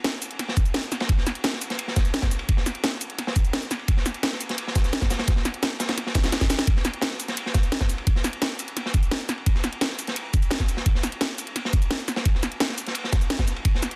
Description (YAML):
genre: drum and bass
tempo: 172 BPM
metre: 4/4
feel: straight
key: none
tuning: none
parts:
  - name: crunchy breakbeat drum kit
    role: drums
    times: 0.0-13.9 s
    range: ride cymbal, snare drum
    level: -33 LUFS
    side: equal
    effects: high-pass filter on cymbals, studio reverb, high-pass filter on snare, high-pass filter on room
  - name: drum and bass drum kit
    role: drums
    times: 0.0-14.0 s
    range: hi-hat, shaker, snare drum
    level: -29 LUFS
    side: equal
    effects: overdrive, studio reverb
  - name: electronic kick drum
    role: drums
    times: 0.6-13.7 s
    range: none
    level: -24 LUFS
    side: equal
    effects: studio reverb
room: small room ambience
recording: dense, heavily limited modern master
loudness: -25 LUFS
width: mono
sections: 0.0-14.0 A section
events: drum fill 6.2-6.7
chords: none